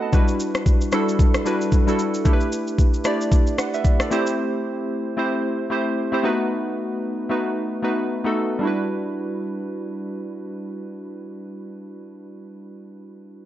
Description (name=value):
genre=amapiano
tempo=113 BPM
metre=4/4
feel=swing 58% on 16ths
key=E minor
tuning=A4 = 441 Hz
part: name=warm analog keys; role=accompaniment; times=0.0-13.5 s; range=G3 to B5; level=-23 LUFS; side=equal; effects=chorus
part: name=smooth R&B drum kit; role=drums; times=0.1-4.4 s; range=kick drum, rim click, shaker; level=-19 LUFS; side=equal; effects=none
room=digital ambience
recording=nothing above 7.8 kHz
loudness=-20 LUFS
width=side -12 dB against mid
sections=0.1-8.6 A section; 8.6-12.9 B section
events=none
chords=0.1 Em9; 2.3 G69; 4.1 Am7; 6.2 B7; 8.6 Em9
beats=| 0.13 0.66 1.19 1.72 | 2.25 2.79 3.32 3.85 | 4.38 4.91 5.44 5.97 | 6.50 7.03 7.56 8.10 | 8.63 9.16 9.69 10.22 | 10.75 11.28 11.81 12.34